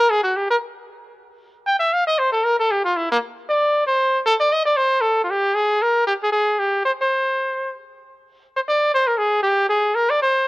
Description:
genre	jazz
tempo	231 BPM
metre	4/4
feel	swing 59% on 8ths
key	unclear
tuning	A4 = 445 Hz
part	clear trumpet	solo	0.0-10.5 s	Bb3 to G5	-17 LUFS	equal	none
room	studio reverb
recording	dry, close 1970s-style studio recording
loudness	-17 LUFS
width	side -21 dB against mid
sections	0.0-4.5 A section; 4.5-10.5 B section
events	trumpet solo 0.0-4.5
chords	none

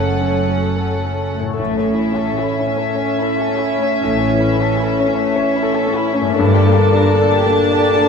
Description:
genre	cinematic, emotional film score for orchestra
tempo	75 BPM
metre	3/4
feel	rubato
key	unclear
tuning	A4 = 440 Hz
part	warm studio violin section	melody	0.0-8.1 s	E5 to A5	-23 LUFS	left 3 dB	none
part	dark chamber violin section	second line	0.0-8.1 s	A3 to Bb4	-23 LUFS	left 4 dB	none
part	clear grand piano	accompaniment	0.0-8.1 s	F#2 to D5	-20 LUFS	left 3 dB	none
part	warm studio viola section	accompaniment	0.0-8.1 s	C#4 to D4	-22 LUFS	right 3 dB	none
part	mellow French horn section	sustained chords	0.0-8.1 s	Bb2 to A4	-22 LUFS	left 2 dB	none
part	concert harp	arpeggios	0.0-8.1 s	F#2 to A4	-25 LUFS	left 6 dB	none
part	warm studio cello section	bass	0.0-7.1 s	F#2 to A2	-23 LUFS	right 4 dB	none
part	warm studio double bass section	bass	0.0-7.1 s	F#1 to A1	-23 LUFS	right 3 dB	none
room	wet concert hall reverb, RT60 2.1 s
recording	minimal, uncompressed stereo recording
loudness	-14 LUFS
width	side -6 dB against mid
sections	0.0-8.1 A section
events	none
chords	0.0 F#m; 1.6 A; 6.4 Gmadd9

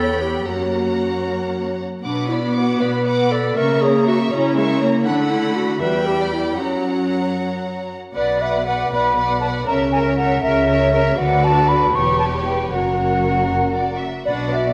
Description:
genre	quick classical-period movement for symphony orchestra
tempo	78 BPM (dotted quarters)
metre	6/8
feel	straight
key	B minor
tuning	A4 = 437 Hz
part	warm symphonic violin section	melody	0.0-14.7 s	C#5 to D6	-32 LUFS	equal	none
part	rich chamber violin section	second line	0.0-14.7 s	A#4 to G5	-27 LUFS	equal	none
part	warm clarinet	second line	0.0-7.3 s	C#4 to B4	-24 LUFS	equal	none
part	rich chamber viola section	accompaniment	0.0-14.7 s	F#3 to B4	-26 LUFS	equal	none
part	rich studio cello section	bass	0.0-14.7 s	E2 to D3	-26 LUFS	equal	none
part	rich chamber double bass section	bass	8.1-14.7 s	E1 to D2	-28 LUFS	equal	none
part	mellow hollow silver concert flute	second line	8.2-14.7 s	D5 to C#6	-22 LUFS	equal	none
room	wet scoring stage reverb, RT60 1.9 s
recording	none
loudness	-19 LUFS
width	mono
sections	0.0-8.1 A section; 8.1-14.7 A section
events	none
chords	0.5 F#; 2.0 Bm; 3.6 A#dim/C#; 5.1 Bm/D; 5.8 Em; 6.6 F#; 8.1 Bm; 9.7 A#dim/C#; 11.2 Bm/D; 11.9 C#m7b5/E; 12.7 F#

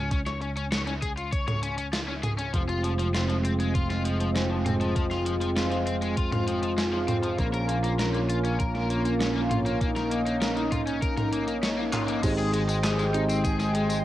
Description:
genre	synthwave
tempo	99 BPM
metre	4/4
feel	straight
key	unclear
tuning	A4 = 442 Hz
part	overdriven electric guitar	riff	0.0-14.0 s	F3 to Db5	-32 LUFS	left 3 dB	analog chorus, cassette tape, tape echo
part	modern bright picked electric bass	bass	0.0-14.0 s	F1 to Db2	-30 LUFS	equal	sidechain pumping
part	electronic kick drum	drums	0.1-13.6 s	none	-29 LUFS	equal	cassette tape
part	gated 80s digital drum machine	drums	0.1-14.0 s	crash cymbal, handclaps, hi-hat, snare drum, tambourine, toms	-32 LUFS	equal	gated reverb, gated reverb snare, cassette tape
part	chorused pulse-width pad	sustained chords	2.5-14.0 s	Ab3 to C6	-28 LUFS	equal	sidechain pumping, cassette tape
part	mellow FM electric piano	stabs	12.2-14.0 s	C4 to C5	-31 LUFS	right 2 dB	chorus, vintage 12-bit sampler grit, cassette tape, analog delay
room	light reverb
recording	home recording on cassette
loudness	-24 LUFS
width	side -14 dB against mid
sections	0.0-12.2 A section; 12.2-14.0 B section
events	drum fill 11.9-12.2; band accent 11.9-12.2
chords	0.0 N.C.; 2.5 Fm; 7.4 Bbm; 12.2 Abmaj7

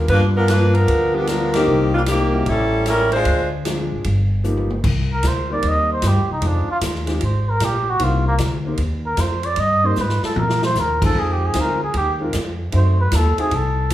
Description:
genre	jazz, big band swing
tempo	152 BPM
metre	4/4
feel	swing 66% on 8ths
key	C minor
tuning	A4 = 440 Hz
part	clear grand piano	accompaniment	0.0-13.5 s	F3 to C5	-27 LUFS	left 1 dB	none
part	upright bass	bass	0.0-13.9 s	G1 to Bb2	-20 LUFS	equal	none
part	clear saxophone section	melody	0.1-3.5 s	Eb3 to C5	-18 LUFS	equal	none
part	swinging big-band drum kit	drums	0.1-13.9 s	crash cymbal, hi-hat, kick drum, ride cymbal, snare drum, toms	-26 LUFS	equal	none
part	trumpet with cup mute	melody	5.1-13.9 s	Bb3 to Eb5	-21 LUFS	right 1 dB	none
room	moderate digital room reverb, RT60 1.1 s, small room ambience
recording	rough home demo mix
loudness	-16 LUFS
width	side -13 dB against mid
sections	0.0-4.8 A section; 4.8-13.9 B section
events	band accent 1.5; drum fill 4.4-4.8, 10.0-10.8; muted trumpet solo 4.8-13.9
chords	0.1 G7#9; 1.7 Cm7; 2.5 A7; 3.3 Dm7b5; 4.0 G7alt; 4.8 Cm7; 6.4 Fm7; 8.0 Cm7; 11.2 Fm7; 12.7 F#dim7

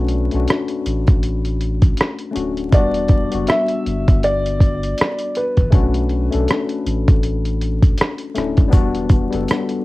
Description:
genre	lo-fi hip hop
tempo	80 BPM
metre	4/4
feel	swing 60% on 16ths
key	E dorian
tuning	A4 = 440 Hz
part	felt-muted upright piano	melody	0.0-8.3 s	B4 to E5	-23 LUFS	equal	plate reverb
part	tine electric piano	accompaniment	0.0-9.8 s	G3 to A4	-22 LUFS	left 4 dB	overdrive, fast stereo tremolo, cassette tape, plate reverb
part	soft dub sub bass	bass	0.0-9.5 s	D1 to B1	-22 LUFS	equal	tube saturation
part	dusty soul sampler-style drum kit	drums	0.1-9.8 s	hi-hat, kick drum, rim click	-15 LUFS	equal	vintage 12-bit sampler grit, cassette tape
part	egg shaker	percussion	8.7-9.7 s	none	-48 LUFS	right 8 dB	none
room	light reverb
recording	home recording on cassette, vinyl crackle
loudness	-15 LUFS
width	side -19 dB against mid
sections	0.0-9.8 A section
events	none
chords	0.0 Bm9; 2.7 Em7; 5.7 Bm9; 8.7 Em7

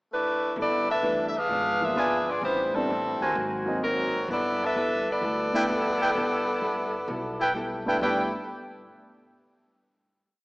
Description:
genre	jazz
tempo	129 BPM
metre	4/4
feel	swing 68% on 8ths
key	G major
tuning	A4 = 441 Hz
part	edgy saxophone section	melody	0.1-8.3 s	Gb3 to G5	-26 LUFS	equal	none
part	vintage hollow-body jazz guitar	accompaniment	0.6-8.3 s	G#2 to A4	-35 LUFS	equal	none
part	upright bass	bass	0.6-8.3 s	G1 to Eb2	-39 LUFS	equal	none
part	warm upright piano	accompaniment	1.0-8.3 s	G2 to E#4	-32 LUFS	equal	none
part	clear trumpet section	stabs	2.0-8.2 s	E4 to G#5	-28 LUFS	equal	none
room	wet concert hall reverb, RT60 2.0 s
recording	small speaker sound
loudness	-24 LUFS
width	side -24 dB against mid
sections	0.0-0.6 pickup bar; 0.6-8.0 A section; 8.0-9.9 final chord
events	none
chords	0.0 Asus24; 0.6 G69; 1.5 G#dim7; 2.4 Am11; 3.4 Ab9; 4.3 G69

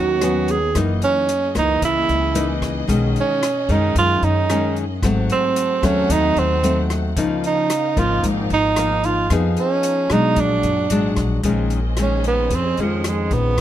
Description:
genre	bossa nova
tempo	112 BPM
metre	4/4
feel	straight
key	unclear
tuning	A4 = 440 Hz
part	clear tenor saxophone	melody	0.0-13.6 s	F3 to Ab4	-19 LUFS	right 4 dB	none
part	nylon-string guitar	accompaniment	0.0-13.6 s	F2 to Ab4	-22 LUFS	left 3 dB	none
part	warm studio string section	sustained chords	0.0-13.6 s	Bb3 to Gb5	-31 LUFS	left 1 dB	none
part	upright bass	bass	0.0-13.6 s	Gb1 to Cb3	-22 LUFS	equal	none
part	open jazz drum kit	drums	0.2-13.6 s	hi-hat, kick drum, rim click	-26 LUFS	left 1 dB	none
room	little or no reverb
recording	close, detailed microphones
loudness	-16 LUFS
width	side -11 dB against mid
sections	0.0-11.4 A section; 11.4-13.6 B section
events	tenor saxophone solo 11.4-13.6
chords	0.0 Abm11; 0.8 Gb13; 2.9 B69; 5.0 Ab7b9; 7.2 Db69; 9.3 Fm7b5; 10.4 Bbaug7; 11.4 Bbm11

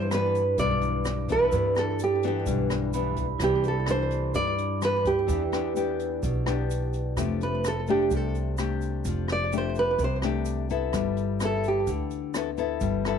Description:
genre	bossa nova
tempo	128 BPM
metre	4/4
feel	straight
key	unclear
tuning	A4 = 440 Hz
part	nylon-string guitar	melody	0.0-11.9 s	G4 to D5	-26 LUFS	right 3 dB	slapback echo
part	nylon-string guitar	accompaniment	0.0-13.2 s	G2 to A4	-30 LUFS	left 11 dB	none
part	vibraphone with medium hard mallets	accompaniment	0.0-7.2 s	E4 to B5	-34 LUFS	right 14 dB	none
part	upright bass	bass	0.0-13.2 s	F1 to G2	-30 LUFS	right 1 dB	none
part	jazz brush drum kit	drums	0.1-13.2 s	hi-hat, kick drum, rim click	-35 LUFS	right 1 dB	none
part	tube shaker	percussion	0.1-13.2 s	none	-47 LUFS	right 19 dB	none
room	light reverb, small room ambience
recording	1960s-style stereo with parts hard left and right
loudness	-24 LUFS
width	side -7 dB against mid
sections	0.0-7.2 A section; 7.2-13.2 B section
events	vibraphone fill 2.7-3.4; nylon-string guitar solo 7.2-13.2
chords	0.0 Em7; 3.4 Cmaj9; 5.3 Em7; 7.2 F69; 10.9 G69

